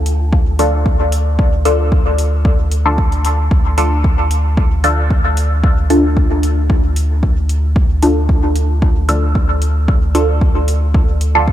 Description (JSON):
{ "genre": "dub techno", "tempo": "113 BPM", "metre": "4/4", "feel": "straight", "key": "D minor", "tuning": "A4 = 443 Hz", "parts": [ { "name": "filtered dub chord stab", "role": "stabs", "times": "0.0-11.5 s", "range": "D4 to A4", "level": "-18 LUFS", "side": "equal", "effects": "phaser, sidechain pumping, dub echo" }, { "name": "round analog bass", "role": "bass", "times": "0.0-11.5 s", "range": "D2", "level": "-15 LUFS", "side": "equal", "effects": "sidechain pumping" }, { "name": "electronic hi-hat", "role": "drums", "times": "0.1-11.3 s", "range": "none", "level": "-29 LUFS", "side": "left 1 dB", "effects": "overdrive" }, { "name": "electronic kick drum", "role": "drums", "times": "0.3-11.5 s", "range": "none", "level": "-14 LUFS", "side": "equal", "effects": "overdrive" } ], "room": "light reverb", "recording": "none", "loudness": "-12 LUFS", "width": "side -12 dB against mid", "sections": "0.0-11.5 A section", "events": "none", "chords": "0.0 Dm", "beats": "0.33 0.86 | 1.39 1.92 2.45 2.98 | 3.51 4.04 4.57 5.10 | 5.63 6.17 6.70 7.23 | 7.76 8.29 8.82 9.35 | 9.88 10.41 10.95 11.48" }